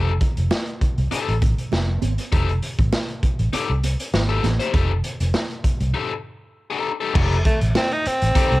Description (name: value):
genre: funk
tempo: 99 BPM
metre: 4/4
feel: straight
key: F mixolydian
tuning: A4 = 440 Hz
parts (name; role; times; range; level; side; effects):
- biting overdriven guitar; accompaniment; 0.0-8.5 s; Eb4 to C5; -25 LUFS; left 6 dB; cassette tape
- vintage muted fingered electric bass; bass; 0.0-8.6 s; F1 to C2; -21 LUFS; equal; none
- raw garage drum kit; drums; 0.2-8.6 s; crash cymbal, hi-hat, kick drum, snare drum; -22 LUFS; equal; cassette tape
- congas; percussion; 0.5-8.5 s; none; -32 LUFS; right 9 dB; none
- raspy tenor saxophone; melody; 7.5-8.6 s; A3 to Eb4; -21 LUFS; equal; cassette tape
room: small room ambience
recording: home recording on cassette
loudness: -19 LUFS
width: side -18 dB against mid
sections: 0.0-7.2 A section; 7.2-8.6 B section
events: break 5.9-7.2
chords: 0.0 F9